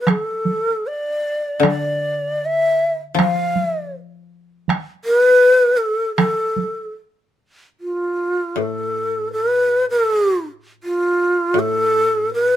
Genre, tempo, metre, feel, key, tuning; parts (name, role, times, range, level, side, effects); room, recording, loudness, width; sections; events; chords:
japanese traditional, Japanese chamber music; 72-83 BPM; 2/4; rubato; A4 = 440 Hz
breathy long shakuhachi; melody; 0.0-12.6 s; F4 to F5; -16 LUFS; equal
taiko ensemble; percussion; 0.1-6.8 s; -18 LUFS; right 3 dB
koto; accompaniment; 1.6-5.4, 8.6-12.6 s; A2 to F3; -23 LUFS; left 5 dB
light reverb; minimal, uncompressed stereo recording; -16 LUFS; side -11 dB against mid
0.0-7.8 A section; 7.8-12.6 B section